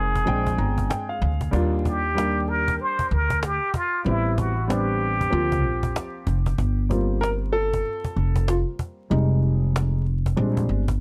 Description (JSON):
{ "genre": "hip hop, jazz-hop", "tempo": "95 BPM", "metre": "4/4", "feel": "swing 63% on 16ths", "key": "G minor", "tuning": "A4 = 442 Hz", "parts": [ { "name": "trumpet with plunger mute", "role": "melody", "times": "0.0-6.3 s", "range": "E4 to C5", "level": "-28 LUFS", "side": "equal", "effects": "analog delay" }, { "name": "dark grand piano", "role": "accompaniment", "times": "0.0-10.8 s", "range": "F3 to Bb5", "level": "-29 LUFS", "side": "equal", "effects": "none" }, { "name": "upright bass", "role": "bass", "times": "0.0-11.0 s", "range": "F1 to Eb2", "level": "-26 LUFS", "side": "equal", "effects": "none" }, { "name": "cajon", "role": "drums", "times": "0.2-11.0 s", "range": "none", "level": "-31 LUFS", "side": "equal", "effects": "none" } ], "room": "little or no reverb", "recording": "dry, gritty hardware recording, transformer saturation, vinyl crackle", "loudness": "-23 LUFS", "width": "mono", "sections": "0.0-6.6 A section; 6.6-11.0 B section", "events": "grand piano fill 0.3-1.5; grand piano solo 6.6-11.0", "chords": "0.3 Bb13; 1.5 Ebmaj9; 4.1 Am9; 5.3 Bb69; 6.6 Gm11; 9.1 Fm7; 10.4 Bb13", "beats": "0.27 0.90 | 1.53 2.16 2.79 3.42 | 4.06 4.69 5.32 5.95 | 6.58 7.21 7.85 8.48 | 9.11 9.74 10.37" }